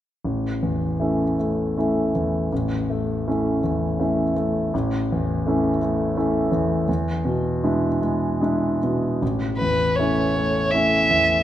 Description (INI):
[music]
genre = classical, romantic duo for violin and grand piano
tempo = 74-86 BPM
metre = 3/4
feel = rubato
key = A major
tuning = A4 = 440 Hz
[part]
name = clear grand piano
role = accompaniment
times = 0.2-11.4 s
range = A1 to E4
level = -20 LUFS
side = equal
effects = none
[part]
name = rich violin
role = melody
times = 9.6-11.4 s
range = B4 to E5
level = -19 LUFS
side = equal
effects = none
[sound]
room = wet recital hall reverb, RT60 1.8 s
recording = none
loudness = -20 LUFS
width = side -12 dB against mid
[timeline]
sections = 0.2-9.2 A section; 9.2-11.4 B section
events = none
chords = 0.2 A; 6.9 E7; 9.2 A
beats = | 0.24 1.00 1.76 | 2.51 3.26 3.99 | 4.73 5.46 6.17 | 6.88 7.63 8.42 | 9.22 9.97 10.71